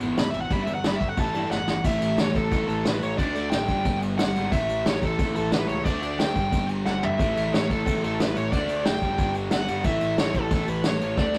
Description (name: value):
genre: punk rock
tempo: 180 BPM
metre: 4/4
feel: straight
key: unclear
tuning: A4 = 439 Hz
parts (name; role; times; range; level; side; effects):
- overdriven semi-hollow guitar; riff; 0.0-11.4 s; E2 to D4; -34 LUFS; equal; none
- raw garage guitar; riff; 0.0-11.4 s; E2 to D4; -33 LUFS; equal; overdrive
- modern bright picked electric bass; bass; 0.0-11.4 s; E1 to G#2; -35 LUFS; equal; none
- vintage brush drum kit; drums; 0.0-11.4 s; crash cymbal, kick drum, snare drum, toms; -29 LUFS; equal; none
- high-gain lead guitar; melody; 0.2-11.4 s; A4 to B5; -31 LUFS; equal; distortion
room: moderate small room reverb, RT60 0.5 s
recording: rough rehearsal-room recording, tube saturation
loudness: -25 LUFS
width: mono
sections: 0.0-1.8 A section; 1.8-11.4 B section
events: lead electric guitar solo 0.0-1.8; drum fill 1.5-1.8, 6.9-7.2, 11.2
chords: 0.0 E/G#; 0.5 G5; 1.2 A5; 3.2 D5; 3.7 G5; 4.5 A; 5.9 D5; 6.4 G5; 7.2 A5; 8.5 D; 9.0 G5; 9.8 A